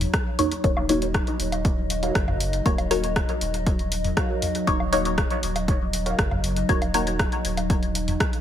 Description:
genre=dub techno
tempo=119 BPM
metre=4/4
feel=straight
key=Eb minor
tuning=A4 = 440 Hz
part: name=warbly tape-like pad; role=sustained chords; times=0.0-8.4 s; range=Gb3 to Eb5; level=-30 LUFS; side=left 1 dB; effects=chorus, built-in reverb, sidechain pumping
part: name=warm sub bass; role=bass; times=0.0-8.2 s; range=Eb1 to Gb1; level=-29 LUFS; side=equal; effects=sidechain pumping
part: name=punchy analog drum machine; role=drums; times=0.0-8.4 s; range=hi-hat, rim click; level=-29 LUFS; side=equal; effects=dub echo
part: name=electronic toms and woodblock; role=percussion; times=0.0-8.2 s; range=none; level=-32 LUFS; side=equal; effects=sidechain pumping on perc, sidechain pumping on toms, dub echo
part: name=electronic kick drum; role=drums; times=0.1-8.3 s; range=none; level=-25 LUFS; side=equal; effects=overdrive
part: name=filtered dub chord stab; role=stabs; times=0.4-7.1 s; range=Bb3 to Db5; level=-26 LUFS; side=left 2 dB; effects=phaser, sidechain pumping, dub echo
part: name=warbly dusty pluck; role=riff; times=2.0-6.2 s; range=Gb4 to F5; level=-33 LUFS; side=right 3 dB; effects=ensemble chorus, cassette tape, sidechain pumping, dub echo
room=digital ambience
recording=none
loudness=-21 LUFS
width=side -10 dB against mid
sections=0.0-8.4 A section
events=filter sweep on synth stab 0.0-8.4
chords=0.0 Ebm7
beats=0.14 | 0.64 1.14 1.65 2.15 | 2.66 3.16 3.67 4.17 | 4.67 5.18 5.68 6.19 | 6.69 7.20 7.70 8.20

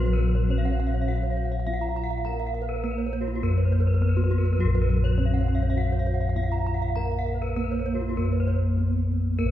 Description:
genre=Balinese gamelan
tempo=102 BPM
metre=4/4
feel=straight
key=Bb pelog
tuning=A4 = 440 Hz
part: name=gamelan-type bronze metallophone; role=melody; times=0.0-9.5 s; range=Gb3-40c to Bb4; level=-32 LUFS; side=right 2 dB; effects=none
part: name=gamelan-type bronze metallophone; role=accompaniment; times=0.0-9.5 s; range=Gb3-40c to Bb3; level=-39 LUFS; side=equal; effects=none
part: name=gamelan-type bronze metallophone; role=arpeggios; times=0.0-9.5 s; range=F4-45c to Bb5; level=-34 LUFS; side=right 6 dB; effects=none
part: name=gamelan-type bossed gongs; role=bass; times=0.0-9.5 s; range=Bb1 to Bb4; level=-24 LUFS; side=left 1 dB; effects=none
part: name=gamelan-type bronze metallophone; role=arpeggios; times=0.1-9.5 s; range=Gb4-40c to Bb5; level=-34 LUFS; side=left 4 dB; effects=none
room=wet church reverb, RT60 3.4 s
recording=recorded in a church or concert hall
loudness=-22 LUFS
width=side -12 dB against mid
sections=0.0-9.4 A section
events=none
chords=none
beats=0.50 1.08 1.67 | 2.25 2.84 3.42 4.01 | 4.59 5.18 5.77 6.36 | 6.96 7.56 8.17 8.78 | 9.39

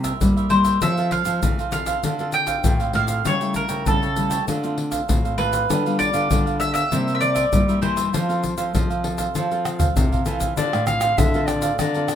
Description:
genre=samba and choro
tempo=98 BPM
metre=4/4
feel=straight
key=F major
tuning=A4 = 440 Hz
part: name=cavaquinho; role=accompaniment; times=0.0-12.1 s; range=D4 to Bb5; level=-28 LUFS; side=right 6 dB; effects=none
part: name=nylon-string guitar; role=accompaniment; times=0.0-12.2 s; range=G2 to A4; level=-28 LUFS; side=left 3 dB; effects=none
part: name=nylon-string guitar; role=bass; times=0.0-12.2 s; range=A2 to G3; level=-25 LUFS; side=equal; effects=none
part: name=egg shaker, surdo, pandeiro and tamborim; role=percussion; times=0.0-12.2 s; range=none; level=-23 LUFS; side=left 1 dB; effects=none
part: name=mandolin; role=melody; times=0.5-10.2 s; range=A4 to G5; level=-23 LUFS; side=equal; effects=none
part: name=warm clarinet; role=second line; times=10.6-12.2 s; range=D5 to F5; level=-24 LUFS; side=left 3 dB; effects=none
room=moderate studio reverb, RT60 0.5 s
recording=minimal, uncompressed stereo recording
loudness=-18 LUFS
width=side -9 dB against mid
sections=0.0-10.6 A section; 10.6-12.2 B section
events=drum fill 9.7-10.6; clarinet solo 10.6-12.2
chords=0.0 C7; 0.8 F; 2.0 Dm7; 3.3 A7/C#; 4.5 Dm7; 5.7 G7/D; 6.9 C7; 8.1 F; 10.6 Dm7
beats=0.21 | 0.82 1.43 2.04 2.65 | 3.26 3.87 4.48 5.09 | 5.70 6.31 6.92 7.53 | 8.14 8.75 9.36 9.97 | 10.58 11.19 11.80

